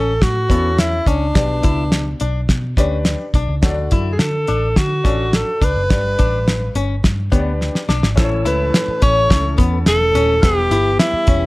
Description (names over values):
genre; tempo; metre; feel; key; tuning
uptempo 1960s-style soul; 106 BPM; 4/4; straight; A mixolydian; A4 = 444 Hz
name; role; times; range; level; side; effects
warm tenor saxophone; melody; 0.0-11.5 s; D4 to C#5; -18 LUFS; equal; none
archtop guitar, miked and amplified; riff; 0.0-11.5 s; B3 to E4; -25 LUFS; left 5 dB; none
vintage muted picked electric bass; bass; 0.0-11.5 s; D#1 to D3; -20 LUFS; equal; none
cloth-damped thuddy drum kit; drums; 0.2-11.4 s; hi-hat, kick drum, snare drum; -16 LUFS; equal; none
warm concert grand piano; accompaniment; 0.5-11.2 s; G2 to D5; -26 LUFS; left 2 dB; none
percussive tonewheel organ; sustained chords; 8.2-11.5 s; E3 to A4; -28 LUFS; right 2 dB; overdrive, chorus vibrato, fast rotary speaker
room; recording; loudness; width
studio reverb; none; -14 LUFS; side -20 dB against mid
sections
0.0-8.2 A section; 8.2-11.5 B section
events
drum fill 7.6-8.2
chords
0.0 A; 1.4 G/B; 3.6 D; 5.9 G; 8.2 A; 10.4 Em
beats
0.22 0.79 | 1.36 1.93 2.49 3.06 | 3.63 4.20 4.77 5.34 | 5.91 6.47 7.04 7.61 | 8.17 8.74 9.30 9.87 | 10.43 11.00